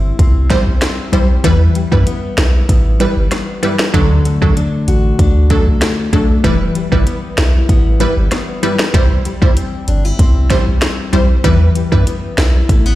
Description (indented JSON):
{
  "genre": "dancehall",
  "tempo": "96 BPM",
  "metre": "4/4",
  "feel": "straight",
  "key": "E minor",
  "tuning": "A4 = 439 Hz",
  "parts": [
    { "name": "fingerpicked steel-string acoustic guitar", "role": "arpeggios", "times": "0.0-13.0 s", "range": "D3 to F#4", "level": "-19 LUFS", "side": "left 4 dB", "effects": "none" },
    { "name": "punchy sub bass", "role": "bass", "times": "0.0-13.0 s", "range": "E1 to F#2", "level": "-13 LUFS", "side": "equal", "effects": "none" },
    { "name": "afro-pop drum kit", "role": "drums", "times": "0.2-12.8 s", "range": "hi-hat, kick drum, rim click, snare drum", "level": "-15 LUFS", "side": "equal", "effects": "none" },
    { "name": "wavetable chord stab", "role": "accompaniment", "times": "0.5-12.0 s", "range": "F#3 to C5", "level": "-18 LUFS", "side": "right 2 dB", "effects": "none" }
  ],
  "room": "little or no reverb",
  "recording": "played on a big sound system in a bare room, stone room reverb",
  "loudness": "-11 LUFS",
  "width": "side -15 dB against mid",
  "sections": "0.0-13.0 A section",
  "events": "none",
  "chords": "0.0 C; 1.4 Em; 3.9 D; 6.4 Em; 8.9 C; 11.4 Em"
}